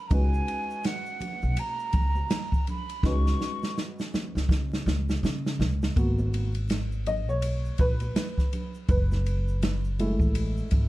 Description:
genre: hip hop, jazz-hop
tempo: 82 BPM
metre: 4/4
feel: swing 60% on 16ths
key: G# minor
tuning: A4 = 440 Hz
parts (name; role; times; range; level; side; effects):
- breathy mellow jazz flute; melody; 0.0-3.8 s; F#5 to C#6; -33 LUFS; right 2 dB; plate reverb
- dark upright piano; accompaniment; 0.0-10.9 s; G#3 to D#5; -33 LUFS; equal; plate reverb
- upright bass; bass; 0.1-10.9 s; F#1 to C#3; -27 LUFS; equal; none
- open jazz drum kit; drums; 0.1-10.9 s; hi-hat, kick drum, ride cymbal, snare drum; -27 LUFS; equal; none
- tube shaker and congas; percussion; 0.1-10.9 s; none; -42 LUFS; right 2 dB; none
room: little or no reverb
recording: dark, warm production, vinyl crackle, lossy compression artefacts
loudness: -25 LUFS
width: side -17 dB against mid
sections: 0.0-6.0 A section; 6.0-10.9 B section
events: drum fill 3.0-6.0; upright piano solo 6.0-10.9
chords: 0.1 C#9sus4; 6.0 G#m9; 8.9 F#m9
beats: | 0.11 0.84 1.58 2.31 | 3.04 3.77 4.50 5.23 | 5.97 6.70 7.43 8.16 | 8.89 9.62 10.36

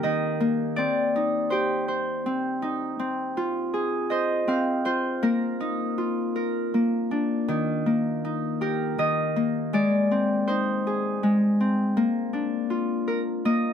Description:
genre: children's music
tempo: 81 BPM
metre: 3/4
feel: straight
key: Eb major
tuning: A4 = 440 Hz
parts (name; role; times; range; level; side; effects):
- Celtic harp; solo; 0.0-13.7 s; Eb3 to F5; -23 LUFS; left 1 dB; none
room: light reverb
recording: close, detailed microphones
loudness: -23 LUFS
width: side -8 dB against mid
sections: 0.0-13.7 A section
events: none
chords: 0.0 Eb; 0.8 Cm; 3.0 Fm; 5.2 Eb5/Bb; 6.0 Bb; 7.5 Eb; 9.7 Ab; 12.0 Bb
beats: 0.04 | 0.79 1.52 2.26 | 3.00 3.74 4.48 | 5.23 5.98 6.74 | 7.50 8.25 9.00 | 9.74 10.49 11.23 | 11.96 12.70 13.44

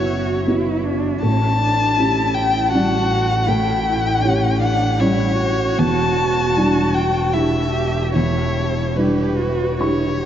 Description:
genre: neoclassical piano and strings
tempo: 78 BPM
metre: 3/4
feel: uneven beats, rubato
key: unclear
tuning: A4 = 440 Hz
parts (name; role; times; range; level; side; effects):
- warm violin; melody; 0.0-10.3 s; B4 to A5; -21 LUFS; left 3 dB; none
- warm cello; second line; 0.0-10.3 s; C#4 to G4; -24 LUFS; right 3 dB; none
- felt-muted upright piano; accompaniment; 0.0-10.3 s; E2 to C#6; -20 LUFS; equal; none
- rich double bass; bass; 0.0-10.3 s; E1 to A1; -23 LUFS; equal; none
room: wet cathedral reverb, RT60 6.4 s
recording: in a vast, echoing space, nothing above 7.5 kHz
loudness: -16 LUFS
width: side -10 dB against mid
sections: 0.0-10.3 A section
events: none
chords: 0.0 F#7sus4; 1.2 A7; 5.8 Em7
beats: 0.48 | 1.23 1.98 2.73 | 3.48 4.24 5.00 | 5.78 6.56 7.34 | 8.15 8.97 9.80

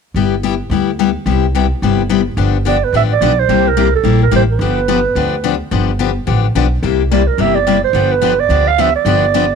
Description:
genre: acoustic string swing (jazz manouche)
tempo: 216 BPM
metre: 4/4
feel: swing 56% on 8ths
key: G mixolydian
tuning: A4 = 440 Hz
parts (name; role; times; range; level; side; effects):
- upright bass; bass; 0.1-9.5 s; G1 to D2; -16 LUFS; right 1 dB; none
- picked steel-string acoustic guitar; accompaniment; 0.2-9.4 s; C3 to G4; -16 LUFS; left 12 dB; none
- growling clarinet; melody; 2.7-9.6 s; A4 to F5; -14 LUFS; right 11 dB; none
room: little or no reverb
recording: 1960s-style stereo with parts hard left and right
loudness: -11 LUFS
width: side -6 dB against mid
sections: 0.1-2.4 A section; 2.4-9.6 B section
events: none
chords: 0.1 G6; 1.3 Cmaj7; 2.4 G7; 3.5 C7; 4.6 G7; 6.8 C7; 7.9 G7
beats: | 0.15 0.43 0.71 0.99 | 1.26 1.54 1.82 2.10 | 2.38 2.66 2.94 3.21 | 3.49 3.77 4.05 4.33 | 4.60 4.88 5.16 5.44 | 5.72 6.00 6.27 6.55 | 6.83 7.11 7.39 7.67 | 7.94 8.22 8.50 8.78 | 9.06 9.34

